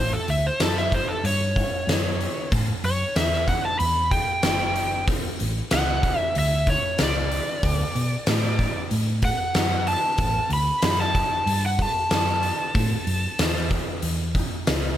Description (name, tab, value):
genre	blues rock power trio and southern rock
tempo	94 BPM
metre	4/4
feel	straight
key	A mixolydian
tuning	A4 = 440 Hz
part	overdriven slide guitar	melody	0.0-13.7 s	A4 to B5	-25 LUFS	equal	none
part	hollow-body short-scale fingered electric bass	bass	0.0-15.0 s	E1 to B2	-25 LUFS	equal	none
part	oversized low-tuned drum kit	drums	0.3-14.8 s	hi-hat, kick drum, snare drum	-24 LUFS	equal	none
room	little or no reverb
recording	none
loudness	-21 LUFS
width	side -11 dB against mid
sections	0.0-15.0 A section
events	electric slide guitar solo 0.0-15.0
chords	0.0 A (rootless); 5.1 E7sus2 (rootless); 7.6 D; 10.2 A7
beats	0.61 1.25 1.89 | 2.53 3.17 3.81 4.45 | 5.09 5.72 6.36 7.00 | 7.64 8.28 8.92 9.56 | 10.20 10.84 11.48 12.12 | 12.75 13.39 14.03 14.67